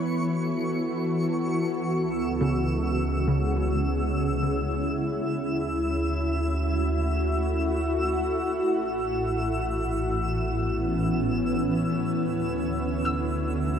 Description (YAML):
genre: ambient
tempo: free time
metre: none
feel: none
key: unclear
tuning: A4 = 443 Hz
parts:
  - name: shimmering ambient pad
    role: sustained chords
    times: 0.0-13.8 s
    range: A2 to A4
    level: -25 LUFS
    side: equal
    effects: chorus, built-in reverb, shimmer reverb
  - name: twinkling granular texture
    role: texture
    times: 0.0-13.8 s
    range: C#6 to E6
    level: -35 LUFS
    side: left 1 dB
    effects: built-in reverb, shimmer reverb
  - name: warm sub bass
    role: bass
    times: 1.8-13.8 s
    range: A1 to D2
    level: -30 LUFS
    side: equal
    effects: none
  - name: soft round pluck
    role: arpeggios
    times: 2.4-6.7, 13.1-13.8 s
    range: C#3 to E6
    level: -32 LUFS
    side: equal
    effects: ensemble chorus, ping-pong delay
room: wet cathedral reverb, RT60 6.5 s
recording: none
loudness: -24 LUFS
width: side -8 dB against mid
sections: 0.0-1.8 A section; 1.8-13.8 B section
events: none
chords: 0.0 Esus4; 1.8 C#m; 5.2 Dadd9; 8.7 A; 12.1 Dadd9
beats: free time